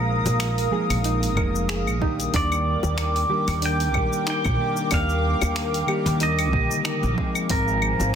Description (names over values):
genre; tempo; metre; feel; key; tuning
sunset chillout; 93 BPM; 4/4; swing 56% on 16ths; Eb major; A4 = 440 Hz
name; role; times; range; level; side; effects
pedal steel guitar; melody; 0.0-8.1 s; Bb4 to G5; -27 LUFS; right 2 dB; digital delay
mellow electric guitar; accompaniment; 0.0-8.2 s; D3 to Ab4; -28 LUFS; equal; auto-pan, digital delay
airy breathy pad; sustained chords; 0.0-8.2 s; Bb4 to Eb6; -28 LUFS; equal; chorus
upright bass; bass; 0.0-8.2 s; F1 to Eb2; -25 LUFS; equal; none
deep house drum kit; drums; 0.3-8.1 s; claves, finger snaps, hi-hat, shaker; -30 LUFS; left 2 dB; soft clipping on snare
bongos; percussion; 0.3-8.1 s; none; -32 LUFS; left 6 dB; none
soft round pluck; arpeggios; 0.7-7.7 s; C4 to Bb4; -33 LUFS; right 4 dB; chorus, digital delay
electronic kick drum; drums; 1.4-7.6 s; none; -26 LUFS; equal; none
room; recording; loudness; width
light reverb; dense, heavily limited modern master; -20 LUFS; side -8 dB against mid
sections
0.0-8.2 A section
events
none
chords
0.0 Bb7sus4; 2.3 Ebmaj7; 7.5 Ab6